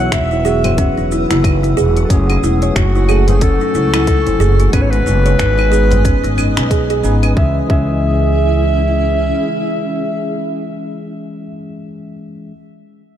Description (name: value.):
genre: organic downtempo.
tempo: 91 BPM.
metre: 4/4.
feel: swing 58% on 16ths.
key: C# minor.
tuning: A4 = 440 Hz.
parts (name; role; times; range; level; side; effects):
warm clarinet; melody; 0.0-10.8 s; F#4 to F#5; -20 LUFS; equal; digital delay.
bell-like tine electric piano; accompaniment; 0.0-12.5 s; E3 to B4; -22 LUFS; left 2 dB; vintage 12-bit sampler grit, sidechain pumping, tape echo.
granular cloud pad; sustained chords; 0.0-10.8 s; A3 to E6; -23 LUFS; right 2 dB; built-in reverb, sidechain pumping.
kalimba; arpeggios; 0.0-7.9 s; C#4 to C#5; -20 LUFS; right 2 dB; tape echo.
upright bass; bass; 0.0-9.3 s; E1 to C#2; -15 LUFS; equal; sidechain pumping.
deep house drum kit; drums; 0.1-7.3 s; claves, finger snaps, hi-hat, shaker; -24 LUFS; equal; none.
electronic kick drum; drums; 0.1-7.9 s; none; -16 LUFS; equal; none.
tabla; percussion; 0.3-6.5 s; none; -24 LUFS; left 2 dB; none.
room: light reverb, small room ambience.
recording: dark, warm production.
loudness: -12 LUFS.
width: side -10 dB against mid.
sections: 0.0-7.4 A section; 7.4-10.0 B section.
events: none.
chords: 0.0 Esus2; 2.1 F#madd9; 4.7 G#m; 7.4 C#m.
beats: 0.12 0.78 1.44 | 2.10 2.76 3.42 4.08 | 4.74 5.39 6.05 6.71 | 7.37 8.03 8.69 9.35.